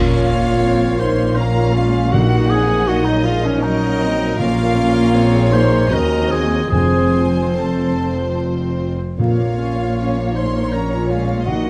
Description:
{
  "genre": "classical",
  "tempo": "72-81 BPM",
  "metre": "3/4",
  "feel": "rubato",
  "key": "Bb minor",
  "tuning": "A4 = 442 Hz",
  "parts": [
    { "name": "rich studio violin section", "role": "melody", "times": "0.0-11.7 s", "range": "Bb4 to Gb5", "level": "-29 LUFS", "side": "equal", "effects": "none" },
    { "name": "mellow clarinet", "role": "second line", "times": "0.0-11.7 s", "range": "Db4 to C5", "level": "-24 LUFS", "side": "equal", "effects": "none" },
    { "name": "mellow flute section", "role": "second line", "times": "0.0-11.7 s", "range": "Db5 to C6", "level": "-30 LUFS", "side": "equal", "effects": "none" },
    { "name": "rich studio violin section", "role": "second line", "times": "0.0-11.7 s", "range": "Db5 to C6", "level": "-33 LUFS", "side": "equal", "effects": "none" },
    { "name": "dark studio viola section", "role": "accompaniment", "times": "0.0-11.7 s", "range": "Eb3 to Ab4", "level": "-25 LUFS", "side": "equal", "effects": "none" },
    { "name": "mellow French horn section", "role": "sustained chords", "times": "0.0-11.7 s", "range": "F3 to Eb4", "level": "-26 LUFS", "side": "equal", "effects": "none" },
    { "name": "concert harp", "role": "arpeggios", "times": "0.0-11.7 s", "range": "Bb2 to Db5", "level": "-30 LUFS", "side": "equal", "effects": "none" },
    { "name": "clear studio double bass section", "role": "bass", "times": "0.0-11.7 s", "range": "F1 to Eb2", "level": "-24 LUFS", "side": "equal", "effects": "none" },
    { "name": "warm studio cello section", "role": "bass", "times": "0.0-11.7 s", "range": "Eb2 to Bb2", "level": "-26 LUFS", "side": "equal", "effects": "none" },
    { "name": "timpani", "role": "percussion", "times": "2.1-11.7 s", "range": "F2 to Bb2", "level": "-24 LUFS", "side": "equal", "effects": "none" }
  ],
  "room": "moderate scoring stage reverb, RT60 1.9 s",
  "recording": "vinyl crackle",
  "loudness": "-17 LUFS",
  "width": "mono",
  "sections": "0.0-11.7 A section",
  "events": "none",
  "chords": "0.0 Bbm; 2.1 Ebm/Bb; 4.4 Bbm; 5.9 Cdim/Eb; 6.7 F; 9.2 Bbm"
}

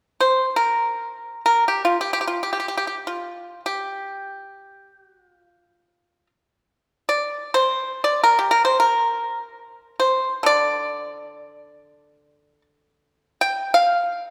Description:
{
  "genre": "chinese traditional, Chinese solo plucked strings",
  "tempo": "free time",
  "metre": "none",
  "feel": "none",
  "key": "unclear",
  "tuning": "A4 = 440 Hz",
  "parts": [
    { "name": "pipa", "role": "solo", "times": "0.2-14.3 s", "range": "D3 to G5", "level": "-21 LUFS", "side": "equal", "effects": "none" }
  ],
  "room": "wet scoring stage reverb, RT60 1.8 s",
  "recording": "recorded in a church or concert hall",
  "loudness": "-21 LUFS",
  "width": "mono",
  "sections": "0.0-14.3 A section",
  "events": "none",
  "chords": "none"
}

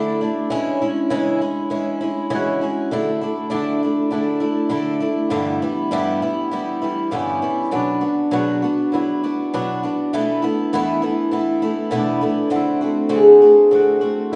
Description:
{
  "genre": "acoustic folk duo or small band",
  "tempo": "100 BPM",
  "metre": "4/4",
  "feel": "straight",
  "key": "unclear",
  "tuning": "A4 = 440 Hz",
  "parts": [
    { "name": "concert harp", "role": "second line", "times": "0.0-14.4 s", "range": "A3 to G#4", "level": "-21 LUFS", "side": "equal", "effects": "none" },
    { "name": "picked twelve-string acoustic guitar", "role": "accompaniment", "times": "0.0-14.4 s", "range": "E2 to F#4", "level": "-23 LUFS", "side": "equal", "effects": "none" }
  ],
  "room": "wet recital hall reverb, RT60 1.4 s",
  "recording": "recorded in a church or concert hall, nothing above 10.4 kHz",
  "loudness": "-19 LUFS",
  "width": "mono",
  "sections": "0.0-14.4 A section",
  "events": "harp solo 0.0-14.4",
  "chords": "0.0 Dsus2; 0.5 C#m; 2.9 Dsus2; 5.3 G6; 7.7 Bm; 10.1 Asus2/E; 12.5 D7"
}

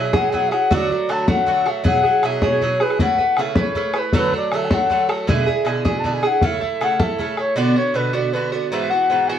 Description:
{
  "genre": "celtic folk, Celtic jig",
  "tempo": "105 BPM (dotted quarters)",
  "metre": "6/8",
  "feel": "straight",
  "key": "A major",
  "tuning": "A4 = 444 Hz",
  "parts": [
    { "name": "bright reedy baroque flute", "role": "melody", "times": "0.0-9.4 s", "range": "B4 to A5", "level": "-20 LUFS", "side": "left 2 dB", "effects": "none" },
    { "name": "Irish bouzouki", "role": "accompaniment", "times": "0.0-9.4 s", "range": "G#2 to B4", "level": "-21 LUFS", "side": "right 2 dB", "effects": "none" },
    { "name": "bodhran", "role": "percussion", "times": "0.1-7.5 s", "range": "none", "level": "-21 LUFS", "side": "left 1 dB", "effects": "none" }
  ],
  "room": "moderate small room reverb, RT60 0.5 s",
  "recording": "dark, warm production",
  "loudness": "-16 LUFS",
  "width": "side -9 dB against mid",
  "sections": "0.0-7.6 A section; 7.6-9.4 B section",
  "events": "none",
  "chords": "0.0 Eadd9; 0.7 D; 1.9 Eadd9; 3.0 Aadd9; 4.1 D; 5.3 E7; 6.4 A; 7.6 Bm; 8.7 Eadd9"
}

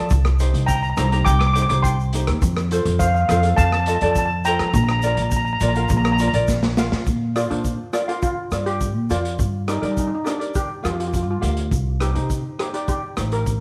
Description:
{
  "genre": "calypso",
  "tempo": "103 BPM",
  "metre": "4/4",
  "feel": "straight",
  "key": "Bb major",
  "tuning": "A4 = 440 Hz",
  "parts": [
    { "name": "steel pan", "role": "melody", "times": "0.0-13.6 s", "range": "D4 to D6", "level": "-26 LUFS", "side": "equal", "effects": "none" },
    { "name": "ukulele", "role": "accompaniment", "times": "0.0-13.5 s", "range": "Eb4 to F5", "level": "-29 LUFS", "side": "equal", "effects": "none" },
    { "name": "upright bass", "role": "bass", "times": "0.0-13.6 s", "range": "A1 to G3", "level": "-23 LUFS", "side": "equal", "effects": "none" },
    { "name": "vintage drum kit", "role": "drums", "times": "0.1-13.6 s", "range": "hi-hat, kick drum, rim click, snare drum", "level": "-28 LUFS", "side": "equal", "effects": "none" },
    { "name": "egg shaker", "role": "percussion", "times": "0.1-13.6 s", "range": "none", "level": "-42 LUFS", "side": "equal", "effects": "none" }
  ],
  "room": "light reverb, studio ambience",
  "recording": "none",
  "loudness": "-20 LUFS",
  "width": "mono",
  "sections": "0.0-7.1 A section; 7.1-13.6 B section",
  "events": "drum fill 6.5-7.1",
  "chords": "0.1 Cm; 2.4 F; 4.7 Bb; 9.4 Gm7; 11.7 Cm"
}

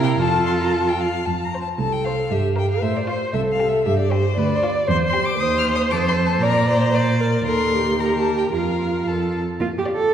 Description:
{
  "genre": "quick classical-period movement for string quartet",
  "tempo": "116 BPM",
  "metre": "2/4",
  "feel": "straight",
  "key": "F major, Bb major from 5.4 s",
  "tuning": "A4 = 440 Hz",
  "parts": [
    { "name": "warm violin", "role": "melody", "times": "0.0-10.1 s", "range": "B4 to F6", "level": "-26 LUFS", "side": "left 6 dB", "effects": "none" },
    { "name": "clear violin", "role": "second line", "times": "0.0-10.1 s", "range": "F4 to D5", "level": "-28 LUFS", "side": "left 2 dB", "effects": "none" },
    { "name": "dark viola", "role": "accompaniment", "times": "0.0-10.0 s", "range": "Bb3 to D5", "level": "-22 LUFS", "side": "right 1 dB", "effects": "none" },
    { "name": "warm cello", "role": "bass", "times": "0.0-10.1 s", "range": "C2 to A4", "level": "-22 LUFS", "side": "right 2 dB", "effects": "none" }
  ],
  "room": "wet scoring stage reverb, RT60 2.2 s",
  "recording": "heard from further back in the room",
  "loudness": "-18 LUFS",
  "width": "side -9 dB against mid",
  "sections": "0.0-1.3 A section; 1.3-9.6 A section",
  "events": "none",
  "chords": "0.2 F; 2.3 Gm6; 2.8 F/A; 3.3 C5; 4.4 Dm7; 4.9 C/E; 5.4 Cm/Eb; 5.9 F; 6.4 Bb; 7.5 Eb; 8.5 Bb5/F; 9.6 Bb"
}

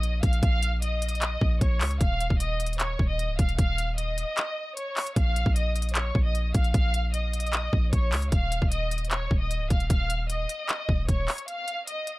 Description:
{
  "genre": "hip hop, trap",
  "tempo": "152 BPM",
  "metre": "4/4",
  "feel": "half-time",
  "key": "unclear",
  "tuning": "A4 = 440 Hz",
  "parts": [
    { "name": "warm symphonic violin section", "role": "melody", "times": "0.0-12.2 s", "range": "Db5 to F6", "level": "-31 LUFS", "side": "equal", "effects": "low-pass filter" },
    { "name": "hard-hitting 808-style bass", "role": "bass", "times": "0.0-11.3 s", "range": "Db1 to Db2", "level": "-27 LUFS", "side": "equal", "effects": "none" },
    { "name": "trap drum kit", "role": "drums", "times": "0.0-12.2 s", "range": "handclaps, hi-hat, kick drum", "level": "-26 LUFS", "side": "equal", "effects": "none" }
  ],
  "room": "little or no reverb",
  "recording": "dry, gritty hardware recording",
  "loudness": "-24 LUFS",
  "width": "side -20 dB against mid",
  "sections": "0.0-11.5 A section",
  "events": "break 4.4-5.2, 11.5-12.2",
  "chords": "0.0 Bbm; 2.0 Dbadd9; 5.2 Bbm; 8.3 Dbadd9; 11.5 Dbadd9 (rootless)"
}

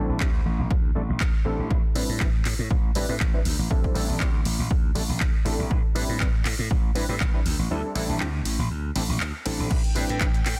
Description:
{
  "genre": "filtered disco house",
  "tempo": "120 BPM",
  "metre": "4/4",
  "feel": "swing 54% on 16ths",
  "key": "unclear",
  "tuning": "A4 = 440 Hz",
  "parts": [
    { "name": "funky polysynth comp", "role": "accompaniment", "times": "0.0-10.3 s", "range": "G3 to B4", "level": "-34 LUFS", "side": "equal", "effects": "chorus, phaser, vintage 12-bit sampler grit, sidechain pumping, low-pass filter" },
    { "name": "glassy slap bass", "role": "bass", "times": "0.0-10.6 s", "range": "A1 to A2", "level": "-30 LUFS", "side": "equal", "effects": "sidechain pumping, low-pass filter" },
    { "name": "electronic kick drum", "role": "drums", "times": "0.2-10.3 s", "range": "none", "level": "-26 LUFS", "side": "equal", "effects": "none" },
    { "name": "house drum kit", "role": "drums", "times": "0.2-10.6 s", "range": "crash cymbal, handclaps, hi-hat", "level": "-34 LUFS", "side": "equal", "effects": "sidechain pumping on hats, sidechain pumping on cymbals" },
    { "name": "rich symphonic violin section", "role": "sustained chords", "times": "9.7-10.6 s", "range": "G5", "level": "-39 LUFS", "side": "equal", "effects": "sidechain pumping, low-pass filter" }
  ],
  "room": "little or no reverb",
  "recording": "dense, heavily limited modern master",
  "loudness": "-25 LUFS",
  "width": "mono",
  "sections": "0.0-10.6 A section",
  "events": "filter sweep 0.0-10.6; break 7.7-9.7",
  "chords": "0.0 D9sus4; 1.7 Am11; 3.5 D9sus4; 5.7 Am11; 7.5 D9sus4; 9.7 Am11"
}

